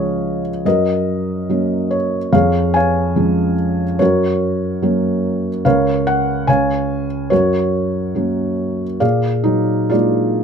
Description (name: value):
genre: classical, lyrical solo piano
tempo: 72 BPM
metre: 4/4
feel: rubato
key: F# major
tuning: A4 = 440 Hz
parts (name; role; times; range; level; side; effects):
- felt-muted upright piano; solo; 0.0-10.4 s; C#2 to G#5; -15 LUFS; equal; none
room: light reverb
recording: close, detailed microphones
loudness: -15 LUFS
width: side -7 dB against mid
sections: 0.0-10.4 A section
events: none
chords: 0.0 C#; 0.6 F#; 2.3 C#/E#; 4.0 F#; 5.6 F#/C#; 6.5 C#; 7.3 F#; 9.0 A#7